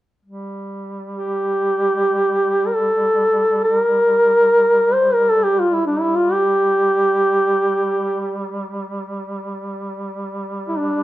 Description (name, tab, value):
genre	caucasian folk, Caucasian lament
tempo	free time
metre	none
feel	none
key	G dorian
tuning	A4 = 442 Hz
part	warm duduk	drone	0.2-11.0 s	G3	-28 LUFS	right 1 dB	plate reverb
part	mellow duduk	melody	1.1-11.0 s	D4 to C5	-15 LUFS	equal	plate reverb
room	wet small room reverb, RT60 0.5 s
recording	rough home demo mix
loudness	-15 LUFS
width	side -15 dB against mid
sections	0.2-11.0 A section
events	none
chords	none